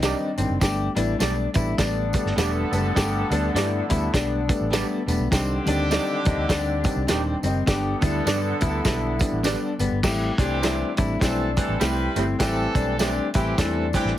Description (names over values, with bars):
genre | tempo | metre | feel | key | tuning
uptempo 1960s-style soul | 102 BPM | 4/4 | swing 60% on 8ths | G major | A4 = 439 Hz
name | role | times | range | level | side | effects
warm horn section | second line | 0.0-14.1 s | D3 to B4 | -30 LUFS | right 2 dB | none
clear upright piano | accompaniment | 0.0-14.1 s | D3 to G4 | -26 LUFS | left 1 dB | none
electric guitar through a small old amp | riff | 0.0-14.1 s | B3 to G4 | -29 LUFS | left 8 dB | none
electric guitar through a small old amp | stabs | 0.0-13.1 s | A3 to D5 | -32 LUFS | right 8 dB | spring reverb
vintage muted fingered electric bass | bass | 0.0-14.1 s | Eb1 to G2 | -27 LUFS | right 1 dB | none
warm soul drum kit | drums | 0.0-14.1 s | crash cymbal, hi-hat, kick drum, snare drum | -25 LUFS | right 1 dB | none
tambourine | percussion | 0.0-14.0 s | none | -38 LUFS | right 6 dB | none
room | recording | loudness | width
light reverb | heavily compressed radio sound, multiband compression | -20 LUFS | side -12 dB against mid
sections
0.0-10.0 A section; 10.0-14.2 B section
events
none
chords
0.0 Cmadd9; 0.6 Gadd9; 5.3 Cmadd9; 7.7 G; 10.0 Am7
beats
0.03 | 0.61 1.20 1.79 2.38 | 2.96 3.55 4.14 4.73 | 5.32 5.91 6.49 7.08 | 7.67 8.26 8.85 9.44 | 10.03 10.62 11.22 11.81 | 12.40 12.99 13.58